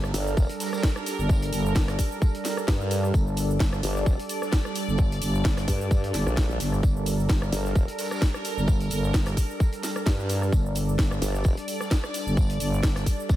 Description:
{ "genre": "bass house", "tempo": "130 BPM", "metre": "4/4", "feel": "swing 54% on 16ths", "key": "G minor", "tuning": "A4 = 439 Hz", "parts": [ { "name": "sweeping resonant pad", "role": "sustained chords", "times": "0.0-13.4 s", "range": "G3 to D5", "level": "-31 LUFS", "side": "right 2 dB", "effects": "chorus, sidechain pumping" }, { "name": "growling FM bass", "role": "bass", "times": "0.0-13.4 s", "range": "G1", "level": "-26 LUFS", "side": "equal", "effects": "tube saturation, sidechain pumping" }, { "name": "garage drum kit", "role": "drums", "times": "0.0-13.4 s", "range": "hi-hat, rim click, shaker, snare drum", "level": "-33 LUFS", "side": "equal", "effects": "none" }, { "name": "formant-sweep wobble bass", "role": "bass", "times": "0.1-11.6 s", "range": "F1 to G2", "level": "-27 LUFS", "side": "equal", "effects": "chorus, sidechain pumping" }, { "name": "raw garage drum kit", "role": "drums", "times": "0.1-13.4 s", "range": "hi-hat, snare drum, tambourine", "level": "-44 LUFS", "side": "equal", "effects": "none" }, { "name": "electronic kick drum", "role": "drums", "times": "0.4-13.4 s", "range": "none", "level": "-22 LUFS", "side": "equal", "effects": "none" } ], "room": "small room ambience", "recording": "none", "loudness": "-22 LUFS", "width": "side -14 dB against mid", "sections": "0.0-13.4 A section", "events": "none", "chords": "0.0 Gmadd9", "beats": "0.37 0.83 | 1.29 1.76 2.22 2.68 | 3.14 3.60 4.06 4.53 | 4.99 5.45 5.91 6.37 | 6.83 7.29 7.76 8.22 | 8.68 9.14 9.60 10.06 | 10.53 10.99 11.45 11.91 | 12.37 12.83 13.29" }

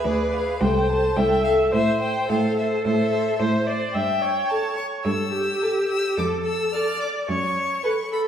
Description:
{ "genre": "quick classical-period movement for string quartet", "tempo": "108 BPM", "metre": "4/4", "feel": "rubato", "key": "A minor", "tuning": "A4 = 440 Hz", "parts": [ { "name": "clear violin", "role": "melody", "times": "0.0-8.2 s", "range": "D5 to F6", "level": "-27 LUFS", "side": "left 3 dB", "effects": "none" }, { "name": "clear violin", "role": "second line", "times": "0.0-7.9 s", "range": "Ab4 to C5", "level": "-25 LUFS", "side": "left 1 dB", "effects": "none" }, { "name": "rich viola", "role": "accompaniment", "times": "0.0-8.3 s", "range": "G4 to E5", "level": "-25 LUFS", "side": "right 1 dB", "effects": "none" }, { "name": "bright cello", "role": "bass", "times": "0.0-7.7 s", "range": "C2 to A2", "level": "-25 LUFS", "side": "right 1 dB", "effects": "none" } ], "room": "wet stone room reverb, RT60 1.6 s", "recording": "heard from further back in the room", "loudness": "-20 LUFS", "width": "side -9 dB against mid", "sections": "0.0-8.3 A section", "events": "none", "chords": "0.0 Ddim7; 0.6 Am/C; 1.7 Am; 3.9 A7/G; 6.2 Dm/F; 7.3 F#m", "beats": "0.04 0.61 1.17 | 1.73 2.29 2.85 3.40 | 3.95 4.50 5.05 5.61 | 6.18 6.74 7.29 7.85" }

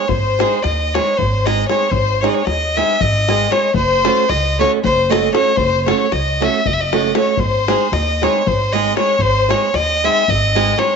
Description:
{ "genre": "balkan folk, Balkan wedding band", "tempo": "231 BPM (eighths)", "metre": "7/8", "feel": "straight", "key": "G# phrygian dominant", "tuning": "A4 = 435 Hz", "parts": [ { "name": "rich fiddle", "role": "melody", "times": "0.0-11.0 s", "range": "B#4 to E5", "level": "-17 LUFS", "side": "left 1 dB", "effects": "none" }, { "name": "rich violin", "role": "second line", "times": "0.0-11.0 s", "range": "B#4 to E5", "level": "-22 LUFS", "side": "left 10 dB", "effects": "none" }, { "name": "flamenco guitar", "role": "accompaniment", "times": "0.0-11.0 s", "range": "G#3 to A4", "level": "-20 LUFS", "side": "right 14 dB", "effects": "none" }, { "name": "upright bass", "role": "bass", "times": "0.1-10.7 s", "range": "F#1 to D#2", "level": "-21 LUFS", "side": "equal", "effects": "none" }, { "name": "davul", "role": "percussion", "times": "0.1-10.9 s", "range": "none", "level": "-24 LUFS", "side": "left 8 dB", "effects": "none" } ], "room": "wet spring reverb, RT60 1.5 s, small room ambience", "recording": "1960s-style stereo with parts hard left and right, nothing above 7.8 kHz", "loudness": "-13 LUFS", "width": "side -6 dB against mid", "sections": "0.1-11.0 A section", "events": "none", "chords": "0.1 G#; 3.7 F#m; 7.4 G#", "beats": "| 0.09 0.35 0.61 0.88 1.14 1.40 1.66 | 1.92 2.18 2.44 2.70 2.96 3.22 3.48 | 3.74 4.00 4.26 4.53 4.79 5.05 5.31 | 5.57 5.83 6.08 6.34 6.61 6.86 7.12 | 7.38 7.64 7.90 8.16 8.42 8.68 8.94 | 9.20 9.46 9.72 9.98 10.24 10.50 10.76" }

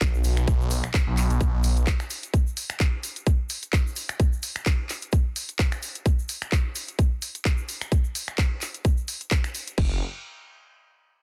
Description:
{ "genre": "bass house", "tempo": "129 BPM", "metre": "4/4", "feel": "swing 55% on 16ths", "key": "unclear", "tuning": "A4 = 436 Hz", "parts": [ { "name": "phased detuned saw bass", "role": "bass", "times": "0.0-1.9, 9.8-10.0 s", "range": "F#1 to B1", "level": "-25 LUFS", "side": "equal", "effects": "phaser, sidechain pumping" }, { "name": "garage drum kit", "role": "drums", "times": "0.0-9.9 s", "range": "crash cymbal, kick drum", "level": "-25 LUFS", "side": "equal", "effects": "none" }, { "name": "garage drum kit", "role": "drums", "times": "0.0-9.8 s", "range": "finger snaps, handclaps, hi-hat", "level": "-33 LUFS", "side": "equal", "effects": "none" }, { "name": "egg shaker", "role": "percussion", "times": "0.0-9.8 s", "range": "none", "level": "-42 LUFS", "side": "equal", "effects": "none" } ], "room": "digital ambience", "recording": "dense, heavily limited modern master", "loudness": "-25 LUFS", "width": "mono", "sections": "0.0-9.8 A section; 9.8-11.2 B section", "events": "none", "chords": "none", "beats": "0.01 | 0.48 0.94 1.41 1.87 | 2.34 2.80 3.27 3.73 | 4.20 4.66 5.13 5.59 | 6.06 6.52 6.99 7.45 | 7.92 8.38 8.85 9.31 | 9.78" }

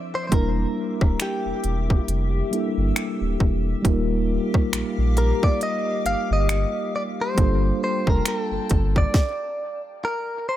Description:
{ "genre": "contemporary R&B", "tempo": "68 BPM", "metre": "4/4", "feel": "swing 58% on 16ths", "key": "unclear", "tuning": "A4 = 440 Hz", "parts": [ { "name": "mellow tine electric piano", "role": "accompaniment", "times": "0.0-9.2 s", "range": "F3 to Bb4", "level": "-26 LUFS", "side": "equal", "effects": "medium stereo tremolo" }, { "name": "glassy FM pad", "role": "sustained chords", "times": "0.0-9.1 s", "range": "G4 to E6", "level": "-33 LUFS", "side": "left 6 dB", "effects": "ensemble chorus, built-in reverb, sidechain pumping" }, { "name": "direct-recorded clean electric guitar", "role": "melody", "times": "0.1-10.6 s", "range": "G4 to F5", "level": "-27 LUFS", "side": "equal", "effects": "dub echo" }, { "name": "warm sub bass", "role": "bass", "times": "0.3-9.1 s", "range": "D1 to Bb1", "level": "-23 LUFS", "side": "equal", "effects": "none" }, { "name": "trap drum kit", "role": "drums", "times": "0.3-9.4 s", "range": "finger snaps, hi-hat, kick drum, rim click, snare drum", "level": "-21 LUFS", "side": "equal", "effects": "none" } ], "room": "digital ambience", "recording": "echo-heavy mix", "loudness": "-20 LUFS", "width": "side -13 dB against mid", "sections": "0.0-10.6 A section", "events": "stop 9.1-10.6", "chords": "0.3 Em7b5; 3.8 Ebmaj9; 7.4 Gm9", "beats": "| 0.32 1.20 2.08 2.96 | 3.85 4.73 5.61 6.50 | 7.38 8.26 9.14 10.02" }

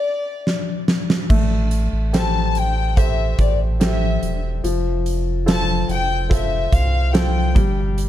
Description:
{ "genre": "pop ballad", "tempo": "72 BPM", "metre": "4/4", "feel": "straight", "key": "unclear", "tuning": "A4 = 437 Hz", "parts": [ { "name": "dark chamber violin section", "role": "melody", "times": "0.0-7.8 s", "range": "D5 to A5", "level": "-25 LUFS", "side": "left 4 dB", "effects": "tape echo" }, { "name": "huge arena drum kit", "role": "drums", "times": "0.5-8.1 s", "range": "crash cymbal, hi-hat, kick drum, snare drum", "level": "-20 LUFS", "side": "equal", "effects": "none" }, { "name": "clear baby grand piano", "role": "accompaniment", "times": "1.3-8.1 s", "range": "F3 to C5", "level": "-26 LUFS", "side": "left 1 dB", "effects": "none" }, { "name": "warm sub bass", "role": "bass", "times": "1.3-8.1 s", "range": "E1 to C2", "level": "-20 LUFS", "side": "equal", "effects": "none" } ], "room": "studio ambience", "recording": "dark, warm production", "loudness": "-17 LUFS", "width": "side -12 dB against mid", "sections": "0.0-1.3 A section; 1.3-8.1 B section", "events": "stop 0.0-1.3; drum fill 0.5-1.3", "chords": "0.0 N.C.; 1.3 Am7; 4.6 F; 7.6 N.C.", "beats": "0.47 | 1.30 2.14 2.97 3.80 | 4.64 5.47 6.30 7.14 | 7.97" }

